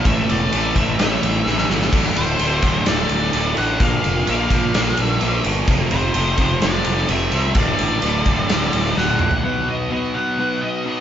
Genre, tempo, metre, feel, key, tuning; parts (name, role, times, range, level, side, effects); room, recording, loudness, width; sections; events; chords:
quiet-loud alternative rock; 128 BPM; 4/4; straight; A4 = 443 Hz
octave-fuzz lead guitar; melody; 0.0-11.0 s; C5 to F#5; -24 LUFS; left 1 dB; distortion
string machine, cellos; sustained chords; 0.0-9.4 s; E3 to Bb4; -31 LUFS; right 1 dB
distorted electric guitar; riff; 0.0-11.0 s; D2 to B3; -22 LUFS; right 1 dB; overdrive
fuzz picked electric bass; bass; 0.1-9.4 s; D1 to C2; -22 LUFS; equal; overdrive
big rock drum kit; drums; 0.1-9.4 s; crash cymbal, kick drum, ride cymbal, snare drum, toms; -20 LUFS; equal
clean electric guitar; arpeggios; 9.4-11.0 s; B2 to B4; -26 LUFS; left 1 dB
light reverb; band playing live in one room, nothing above 7.5 kHz; -16 LUFS; side -10 dB against mid
0.0-9.4 A section; 9.4-11.0 B section
drum fill 1.5-1.9, 9.0-9.4
0.1 Am; 1.9 D; 3.8 Bb; 5.7 F; 7.6 D; 9.4 B